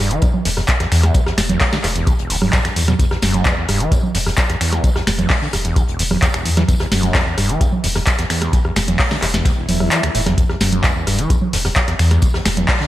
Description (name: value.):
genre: acid house.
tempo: 130 BPM.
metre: 4/4.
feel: straight.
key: E minor.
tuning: A4 = 440 Hz.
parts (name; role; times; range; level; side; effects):
overdriven acid bass; riff; 0.0-12.9 s; E1 to E3; -20 LUFS; equal; distortion, wide subtle chorus, digital delay.
saturated sub bass; bass; 0.0-12.6 s; E1 to E2; -21 LUFS; equal; sidechain pumping.
jazz brush drum kit; drums; 0.0-12.9 s; hi-hat, snare drum, tambourine; -29 LUFS; left 1 dB; high-pass filter on hats, high-pass filter on snare, high-pass filter on perc, high-pass filter on room, gated reverb.
booming analog drum machine; drums; 0.1-12.8 s; congas, finger snaps, handclaps, hi-hat, rim click, snare drum; -19 LUFS; right 1 dB; gated reverb.
electronic kick drum; drums; 0.2-12.8 s; none; -17 LUFS; equal; none.
swell; sound effects; 9.6-10.4 s; none; -26 LUFS; equal; none.
room: light reverb, small room ambience.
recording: bright 1980s-style digital production.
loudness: -14 LUFS.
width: side -14 dB against mid.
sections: 0.0-12.9 A section.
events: swell 9.6-10.4; kick drops out 9.9-10.4.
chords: 0.0 E5.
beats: 0.22 0.69 | 1.15 1.61 2.07 2.53 | 2.99 3.45 3.92 4.38 | 4.84 5.30 5.76 6.22 | 6.68 7.15 7.61 8.07 | 8.53 8.99 9.45 9.92 | 10.38 10.84 11.30 11.76 | 12.22 12.69.